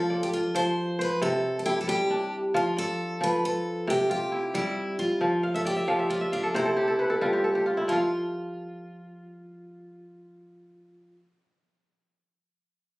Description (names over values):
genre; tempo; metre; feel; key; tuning
west african traditional; 90 BPM (dotted quarters); 12/8; straight; unclear; A4 = 440 Hz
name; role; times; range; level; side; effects
picked steel-string acoustic guitar; melody; 0.0-11.2 s; D4 to C5; -30 LUFS; equal; none
kora; arpeggios; 0.0-11.3 s; C3 to F5; -26 LUFS; equal; none
room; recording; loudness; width
moderate studio reverb, RT60 0.6 s; recorded on a phone in the room, studio reverb; -24 LUFS; side -21 dB against mid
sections
0.0-7.9 A section; 7.9-10.6 B section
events
kora fill 5.4-7.9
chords
0.0 F5; 1.2 C; 2.5 F; 3.9 C; 5.2 N.C.; 6.5 C; 7.9 N.C.